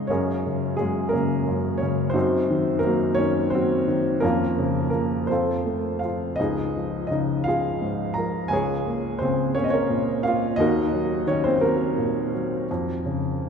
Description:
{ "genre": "classical, lyrical solo piano", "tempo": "57 BPM (dotted quarters)", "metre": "6/8", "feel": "uneven beats, rubato", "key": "unclear", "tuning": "A4 = 440 Hz", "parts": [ { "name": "warm upright piano", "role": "solo", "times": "0.0-13.5 s", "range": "Db2 to Bb5", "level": "-21 LUFS", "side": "equal", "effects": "none" } ], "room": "wet cathedral reverb, RT60 4.4 s", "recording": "recorded in a church or concert hall", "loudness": "-21 LUFS", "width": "side -6 dB against mid", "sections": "0.0-13.5 A section", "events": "none", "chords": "0.1 Gbadd9; 2.2 Ebm/Gb; 4.2 Bbm/F; 5.3 F; 6.4 Dbadd9; 8.5 Dbmaj13; 10.6 Ebm; 12.7 Bbm/F", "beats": "| 0.09 1.13 | 2.15 3.19 | 4.23 5.30 | 6.39 7.47 | 8.53 9.57 | 10.59 11.62 | 12.69" }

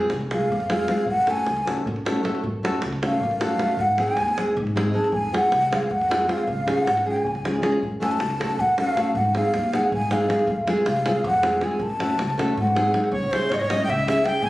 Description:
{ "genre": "balkan folk, Balkan wedding band", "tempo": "314 BPM (eighths)", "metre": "7/8", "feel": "straight", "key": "F# hungarian minor", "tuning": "A4 = 440 Hz", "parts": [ { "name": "nylon-string guitar", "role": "accompaniment", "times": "0.0-14.4 s", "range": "Ab3 to A4", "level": "-24 LUFS", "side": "equal", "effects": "none" }, { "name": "davul", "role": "percussion", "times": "0.0-14.5 s", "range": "none", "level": "-30 LUFS", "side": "right 1 dB", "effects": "none" }, { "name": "upright bass", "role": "bass", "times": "0.1-14.5 s", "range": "G#1 to G#2", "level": "-30 LUFS", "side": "equal", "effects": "none" }, { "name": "breathy mellow ney", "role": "melody", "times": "0.3-14.5 s", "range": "B#4 to A5", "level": "-23 LUFS", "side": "equal", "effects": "plate reverb" }, { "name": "accordion", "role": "second line", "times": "13.1-14.5 s", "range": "B#4 to G#5", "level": "-27 LUFS", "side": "equal", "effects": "none" } ], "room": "moderate studio reverb, RT60 0.5 s", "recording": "recorded on a phone in the room, studio reverb, compression", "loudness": "-20 LUFS", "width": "side -17 dB against mid", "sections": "0.0-13.1 A section; 13.1-14.5 B section", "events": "speeding up 0.0-14.5; ney solo 0.0-13.1", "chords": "0.0 Fm; 1.1 F#m; 3.8 G#; 5.1 Fm; 6.5 C#; 7.8 F#m; 9.2 G#; 10.5 Fm; 11.8 F#m; 12.6 G#7; 13.1 C#m", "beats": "0.10 0.29 0.49 0.68 0.88 | 1.07 1.26 1.46 1.65 1.85 2.04 2.23 | 2.43 2.62 2.81 3.01 3.20 3.40 3.59 | 3.78 3.98 4.17 4.36 4.55 4.75 4.94 | 5.13 5.33 5.52 5.71 5.90 6.09 6.29 | 6.48 6.67 6.86 7.05 7.25 7.44 7.63 | 7.82 8.01 8.20 8.39 8.58 8.77 8.96 | 9.15 9.34 9.53 9.72 9.91 10.10 10.29 | 10.48 10.67 10.86 11.05 11.23 11.42 11.61 | 11.80 11.99 12.18 12.37 12.56 12.74 12.93 | 13.12 13.31 13.50 13.69 13.87 14.06 14.25 | 14.44" }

